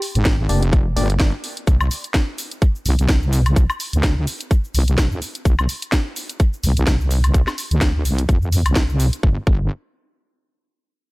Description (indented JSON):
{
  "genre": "bass house",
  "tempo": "127 BPM",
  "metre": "4/4",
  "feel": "swing 56% on 16ths",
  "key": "G phrygian",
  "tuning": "A4 = 439 Hz",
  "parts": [
    { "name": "garage drum kit", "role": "drums", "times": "0.0-9.2 s", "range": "hi-hat, shaker, snare drum, woodblock", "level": "-24 LUFS", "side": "equal", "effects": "none" },
    { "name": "wobble bass", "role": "bass", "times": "0.2-9.7 s", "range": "F1 to F2", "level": "-18 LUFS", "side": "equal", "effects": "chorus, tube saturation, sidechain pumping" },
    { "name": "electronic kick drum", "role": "drums", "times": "0.3-9.6 s", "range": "none", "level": "-16 LUFS", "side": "equal", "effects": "none" },
    { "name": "percussive organ stab", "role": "stabs", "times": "0.5-1.1 s", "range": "Bb3 to D5", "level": "-27 LUFS", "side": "left 2 dB", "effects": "chorus, sidechain pumping, dub echo" }
  ],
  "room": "digital ambience",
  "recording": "none",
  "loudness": "-16 LUFS",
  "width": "side -22 dB against mid",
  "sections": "0.0-9.2 A section; 9.2-11.1 B section",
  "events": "none",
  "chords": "0.0 Gm; 1.7 N.C.",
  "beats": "0.26 0.73 1.20 | 1.67 2.15 2.62 3.09 | 3.56 4.04 4.51 4.98 | 5.45 5.93 6.40 6.87 | 7.34 7.82 8.29 8.76 | 9.23"
}